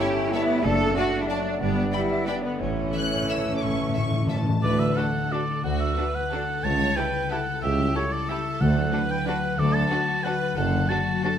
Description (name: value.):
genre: classical, orchestral ballroom waltz.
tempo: 167-202 BPM.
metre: 3/4.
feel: rubato.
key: D major.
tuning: A4 = 440 Hz.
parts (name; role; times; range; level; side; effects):
rich studio violin section; melody; 0.0-11.3 s; A4 to F#6; -35 LUFS; left 4 dB; none.
bright studio violin section; second line; 0.0-11.4 s; F#4 to A5; -33 LUFS; left 4 dB; none.
flute section; second line; 0.0-4.5 s; B4 to A5; -32 LUFS; equal; none.
warm clarinet; second line; 0.0-4.5 s; C#5 to E5; -37 LUFS; left 1 dB; none.
clear studio viola section; accompaniment; 0.0-11.3 s; G3 to G4; -32 LUFS; right 1 dB; none.
mellow bassoon; accompaniment; 0.0-4.4 s; A3 to B3; -34 LUFS; right 1 dB; none.
warm French horn section; sustained chords; 0.0-4.5 s; D3 to D4; -31 LUFS; left 4 dB; none.
concert harp; arpeggios; 0.0-11.4 s; F#2 to A4; -30 LUFS; left 8 dB; none.
rich studio cello section; bass; 0.0-10.8 s; C#2 to A4; -31 LUFS; right 2 dB; none.
rich studio double bass section; bass; 0.6-10.8 s; F#1 to D2; -31 LUFS; right 3 dB; none.
timpani; percussion; 2.6-5.1, 8.6-9.1 s; A2 to D3; -28 LUFS; equal; none.
warm oboe; second line; 4.6-11.4 s; C#5 to A5; -27 LUFS; right 2 dB; none.
warm tuba; bass; 4.6-10.8 s; F#1 to D2; -30 LUFS; right 4 dB; none.
room: moderate concert hall reverb, RT60 1.8 s.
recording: none.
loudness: -22 LUFS.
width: side -9 dB against mid.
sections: 0.0-4.6 A section; 4.6-11.4 B section.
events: timpani fill 2.6-4.6.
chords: 0.0 A7/G; 0.6 D/F#; 1.6 G; 2.6 A; 4.6 D; 6.6 A7/C#; 8.6 D; 10.6 D/F#.